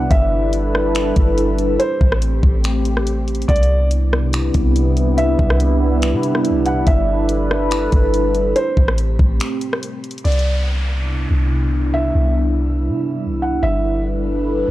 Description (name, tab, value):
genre	hip hop, atmospheric cloud-rap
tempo	142 BPM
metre	4/4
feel	half-time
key	C major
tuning	A4 = 440 Hz
part	felt-muted upright piano	melody	0.0-14.0 s	C5 to F#5	-23 LUFS	right 1 dB	analog delay
part	dark analog pad	sustained chords	0.0-14.7 s	C3 to B4	-20 LUFS	equal	chorus, phaser
part	soft 808-style bass	bass	0.0-14.7 s	G1 to C3	-18 LUFS	equal	none
part	smooth R&B drum kit	drums	0.1-10.5 s	finger snaps, hi-hat, kick drum, rim click	-18 LUFS	equal	none
part	downlifter and riser	sound effects	10.2-14.7 s	none	-33 LUFS	equal	none
room	digital ambience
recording	dry, gritty hardware recording, cassette tape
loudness	-15 LUFS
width	side -15 dB against mid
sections	0.0-10.2 A section; 10.2-14.7 B section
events	break 9.4-10.2; riser 14.0-14.7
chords	0.1 G69; 1.8 Am7; 3.5 Cmaj9; 6.9 G69; 8.6 Am7; 10.2 Cmaj9; 13.6 G69